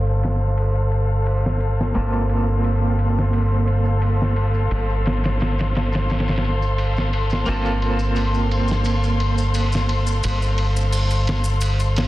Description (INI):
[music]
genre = trip hop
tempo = 87 BPM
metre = 4/4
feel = swing 53% on 16ths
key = G minor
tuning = A4 = 444 Hz
[part]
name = electric guitar at the edge of break-up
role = accompaniment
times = 0.0-12.1 s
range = Bb3 to A4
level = -26 LUFS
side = right 3 dB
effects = tremolo, vintage 12-bit sampler grit, tape echo
[part]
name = rich studio violin section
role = sustained chords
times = 0.0-12.1 s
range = A4 to C6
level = -27 LUFS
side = left 2 dB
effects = none
[part]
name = deep dub fingered electric bass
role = bass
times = 0.0-12.1 s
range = G1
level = -20 LUFS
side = equal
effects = none
[part]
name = trip hop sampler-style drum kit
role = drums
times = 0.1-12.1 s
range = hi-hat, ride cymbal, snare drum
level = -27 LUFS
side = equal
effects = low-pass filter on cymbals, low-pass filter on snare, low-pass filter on hats
[part]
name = maracas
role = percussion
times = 2.0-11.9 s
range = none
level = -39 LUFS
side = left 3 dB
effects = none
[sound]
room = little or no reverb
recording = dense, heavily limited modern master, low-pass filter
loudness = -18 LUFS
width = side -16 dB against mid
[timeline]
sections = 0.0-12.1 A section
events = filter sweep 0.0-12.1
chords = 0.0 Gm11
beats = 0.58 1.27 | 1.96 2.65 3.34 4.03 | 4.72 5.41 6.09 6.79 | 7.47 8.16 8.85 9.54 | 10.23 10.92 11.61